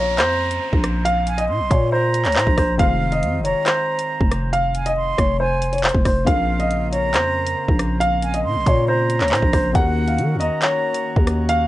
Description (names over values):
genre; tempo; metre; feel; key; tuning
hip hop, drill; 138 BPM; 4/4; half-time; Bb minor; A4 = 440 Hz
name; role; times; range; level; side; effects
dark concert grand piano; melody; 0.0-11.7 s; C5 to Gb5; -21 LUFS; left 1 dB; none
breathy concert flute; second line; 0.0-11.4 s; F5 to C6; -26 LUFS; right 4 dB; analog delay
felt-muted upright piano; accompaniment; 0.0-11.7 s; Db3 to C5; -30 LUFS; left 3 dB; none
growling 808-style bass; bass; 0.0-11.7 s; F1 to Eb3; -22 LUFS; equal; none
downlifter; sound effects; 0.0-2.8 s; none; -35 LUFS; equal; none
drill drum kit; drums; 0.2-11.6 s; handclaps, hi-hat, kick drum, rim click; -20 LUFS; equal; none
chamber organ, principal chorus; sustained chords; 6.3-11.7 s; Db3 to Gb4; -30 LUFS; equal; none
room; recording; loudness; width
studio reverb; dry, gritty hardware recording, nothing above 10.3 kHz; -16 LUFS; side -16 dB against mid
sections
0.0-11.7 A section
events
none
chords
0.0 Bbmadd9; 2.8 Fm7; 6.3 Bbmadd9; 9.8 Ebm7